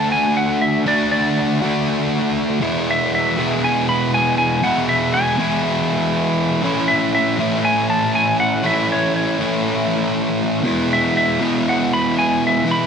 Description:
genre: rock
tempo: 120 BPM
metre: 4/4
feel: straight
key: E mixolydian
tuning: A4 = 441 Hz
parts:
  - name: clean lap steel guitar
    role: melody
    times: 0.0-12.9 s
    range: C#5 to B5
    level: -20 LUFS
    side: equal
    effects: none
  - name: sludgy distorted guitar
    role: riff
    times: 0.0-12.9 s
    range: E2 to F#4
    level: -17 LUFS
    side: equal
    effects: overdrive
room: moderate plate reverb, RT60 3.1 s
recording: none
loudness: -16 LUFS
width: side -6 dB against mid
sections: 0.0-12.9 A section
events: none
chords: 0.0 D; 2.6 E; 6.6 A; 10.6 E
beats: 0.36 | 0.86 1.36 1.86 2.37 | 2.87 3.37 3.87 4.37 | 4.87 5.37 5.87 6.37 | 6.88 7.38 7.88 8.38 | 8.88 9.38 9.89 10.39 | 10.89 11.39 11.90 12.40

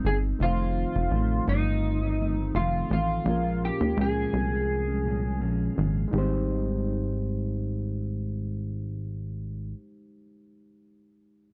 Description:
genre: indie pop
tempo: 84 BPM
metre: 4/4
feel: swing 55% on 16ths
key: Ab major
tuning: A4 = 440 Hz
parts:
  - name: electric guitar through a small old amp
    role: melody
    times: 0.0-5.4 s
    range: Eb4 to Ab4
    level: -32 LUFS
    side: equal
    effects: analog chorus, tape echo
  - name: mellow electric guitar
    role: accompaniment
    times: 0.0-9.9 s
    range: F2 to Eb4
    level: -36 LUFS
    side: equal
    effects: lush chorus, warbly pitch drift
  - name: reed electric piano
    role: accompaniment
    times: 0.0-11.5 s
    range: Ab3 to G5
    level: -38 LUFS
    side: equal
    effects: cassette tape
  - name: plucky analog bass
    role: bass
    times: 0.0-9.7 s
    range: F1 to Eb2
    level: -30 LUFS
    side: equal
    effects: none
room: little or no reverb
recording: dry, close 1970s-style studio recording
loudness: -27 LUFS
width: mono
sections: 0.0-6.1 A section; 6.1-9.0 B section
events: none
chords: 0.4 F7; 3.3 Bbm7; 6.1 Abmaj7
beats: | 0.41 1.13 1.84 2.56 | 3.27 3.98 4.70 5.41 | 6.13 6.84 7.55 8.27

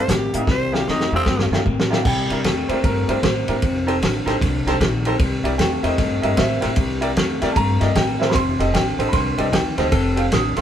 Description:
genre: electric blues shuffle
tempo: 152 BPM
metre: 4/4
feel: swing 63% on 8ths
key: C mixolydian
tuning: A4 = 441 Hz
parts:
  - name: growling tenor saxophone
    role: melody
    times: 0.0-1.5 s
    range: C4 to C5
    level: -23 LUFS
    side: equal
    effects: none
  - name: electric guitar through a small old amp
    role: riff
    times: 0.0-10.6 s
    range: F2 to Bb3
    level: -25 LUFS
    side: left 2 dB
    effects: none
  - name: upright bass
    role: bass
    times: 0.0-10.6 s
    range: F1 to A2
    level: -24 LUFS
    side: equal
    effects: none
  - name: warm soul drum kit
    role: drums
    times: 0.1-10.6 s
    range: crash cymbal, hi-hat, kick drum, ride cymbal, snare drum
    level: -21 LUFS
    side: equal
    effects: none
  - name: bright upright piano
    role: accompaniment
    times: 0.3-10.6 s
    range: Bb3 to F5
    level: -26 LUFS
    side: right 1 dB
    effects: none
  - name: clear upright piano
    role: second line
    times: 2.0-10.6 s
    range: A4 to Eb6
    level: -24 LUFS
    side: right 2 dB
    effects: none
room: moderate stone room reverb, RT60 1.4 s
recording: band playing live in one room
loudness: -17 LUFS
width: side -9 dB against mid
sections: 0.0-2.0 A section; 2.0-10.6 B section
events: drum fill 0.5-2.0, 8.2; upright piano solo 2.0-10.6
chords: 0.0 C7; 3.6 F7; 5.2 C7; 8.3 F7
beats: 0.08 | 0.47 0.86 1.26 1.65 | 2.05 2.44 2.83 3.23 | 3.62 4.02 4.41 4.80 | 5.20 5.59 5.99 6.38 | 6.77 7.17 7.56 7.96 | 8.35 8.74 9.14 9.53 | 9.93 10.32

